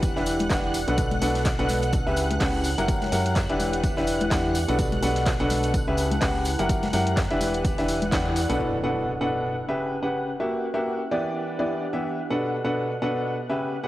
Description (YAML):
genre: piano house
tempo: 126 BPM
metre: 4/4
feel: swing 57% on 16ths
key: B minor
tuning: A4 = 440 Hz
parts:
  - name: analog string pad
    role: sustained chords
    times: 0.0-13.9 s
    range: F#5 to F#6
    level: -35 LUFS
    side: right 1 dB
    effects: ensemble chorus, sidechain pumping
  - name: clear grand piano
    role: riff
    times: 0.0-13.9 s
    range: B2 to F#5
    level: -25 LUFS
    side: equal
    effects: sidechain pumping, tape echo
  - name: organ-like FM bass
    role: bass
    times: 0.0-8.6 s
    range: E1 to F#2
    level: -30 LUFS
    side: equal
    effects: sidechain pumping
  - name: electronic kick drum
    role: drums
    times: 0.0-8.2 s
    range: none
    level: -27 LUFS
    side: equal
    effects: overdrive, cassette tape
  - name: gated 80s drum kit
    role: drums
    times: 0.0-8.5 s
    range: hi-hat, snare drum, tambourine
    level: -39 LUFS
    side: right 1 dB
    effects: high-pass filter on hats, cassette tape, high-pass filter on snare, high-pass filter on perc, high-pass filter on room
  - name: house drum kit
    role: drums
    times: 0.0-8.6 s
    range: handclaps, hi-hat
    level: -33 LUFS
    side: equal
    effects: cassette tape
  - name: tambourine and congas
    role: percussion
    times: 0.0-8.6 s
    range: none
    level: -34 LUFS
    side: left 3 dB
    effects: none
  - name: warbly tape-like pad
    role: texture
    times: 0.0-13.9 s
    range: B3 to A5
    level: -34 LUFS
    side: right 1 dB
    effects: chorus, built-in reverb, sidechain pumping
  - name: impact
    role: sound effects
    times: 8.6-10.5 s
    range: none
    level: -37 LUFS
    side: equal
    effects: none
room: moderate lush hall reverb, RT60 2.1 s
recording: home recording on cassette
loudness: -22 LUFS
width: side -15 dB against mid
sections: 0.0-8.6 A section; 8.6-13.9 B section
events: band accent 8.1; impact 8.6-10.5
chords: 0.0 Em7; 1.0 Bm7; 1.9 C#m7b5; 2.9 F#7b9; 3.6 Em7; 4.8 Bm7; 5.7 C#m7b5; 6.7 F#7b9; 7.4 Em7; 8.6 Bm7; 9.6 C#m7b5; 10.5 F#7b9; 11.2 Em7; 12.4 Bm7; 13.4 C#m7b5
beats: 0.03 0.50 | 0.98 1.46 1.93 2.41 | 2.88 3.36 3.84 4.31 | 4.79 5.26 5.74 6.22 | 6.69 7.17 7.65 8.12 | 8.60 9.07 9.55 10.03 | 10.50 10.98 11.46 11.93 | 12.41 12.88 13.36 13.84